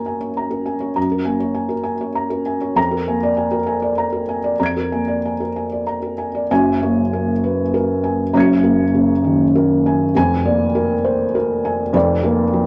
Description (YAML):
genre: neoclassical minimalist piano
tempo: 99 BPM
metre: 3/4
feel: rubato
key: unclear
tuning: A4 = 440 Hz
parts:
  - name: felt-muted upright piano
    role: solo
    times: 0.0-12.7 s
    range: E#1 to D7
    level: -18 LUFS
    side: equal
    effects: none
room: moderate small room reverb, RT60 0.5 s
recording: none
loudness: -18 LUFS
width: mono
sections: 0.0-6.5 A section; 6.5-12.7 B section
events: none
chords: 0.0 F#add9; 2.8 A#7/E#; 6.5 F#add9; 10.1 A#7/E#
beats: 0.36 | 0.96 1.56 2.17 | 2.77 3.36 3.95 | 4.58 5.21 5.85 | 6.50 7.12 7.73 | 8.34 8.94 9.55 | 10.15 10.75 11.35 | 11.94 12.54